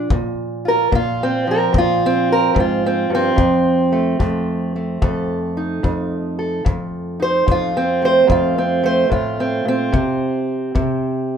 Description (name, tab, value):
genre	acoustic country blues, solo or duo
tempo	73 BPM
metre	4/4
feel	swing 67% on 8ths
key	F mixolydian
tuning	A4 = 439 Hz
part	fingerpicked steel-string acoustic guitar	melody	0.0-11.4 s	F2 to C5	-16 LUFS	right 1 dB	none
part	kick drum	drums	0.1-11.0 s	none	-21 LUFS	left 2 dB	none
room	moderate small room ambience, RT60 0.5 s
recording	minimal, uncompressed stereo recording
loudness	-16 LUFS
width	side -8 dB against mid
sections	0.0-11.4 A section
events	none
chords	0.0 Bb5; 3.4 F7; 9.9 N.C.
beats	| 0.11 0.93 1.75 2.56 | 3.38 4.20 5.02 5.84 | 6.66 7.48 8.29 9.11 | 9.93 10.75